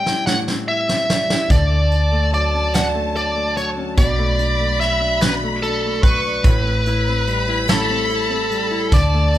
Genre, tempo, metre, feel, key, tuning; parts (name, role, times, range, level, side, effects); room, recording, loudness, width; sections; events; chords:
six-eight pop ballad; 48 BPM (dotted quarters); 6/8; straight; A4 = 440 Hz
bluesy overdriven lead guitar; melody; 0.0-9.4 s; A4 to G5; -21 LUFS; equal; distortion
nylon-string guitar; accompaniment; 0.0-9.4 s; A2 to E4; -25 LUFS; left 1 dB
vintage brush drum kit; drums; 0.1-9.4 s; hi-hat, kick drum, snare drum; -18 LUFS; equal
warm studio violin section; second line; 1.5-9.4 s; A5 to C#6; -24 LUFS; left 1 dB
vintage muted fingered electric bass; bass; 1.5-9.4 s; A1 to D2; -21 LUFS; equal
light reverb; band playing live in one room; -16 LUFS; side -13 dB against mid
0.0-9.4 A section
drum fill 0.0-1.5
0.0 Am7; 1.5 Dmaj7; 4.0 Bm7; 6.4 Am7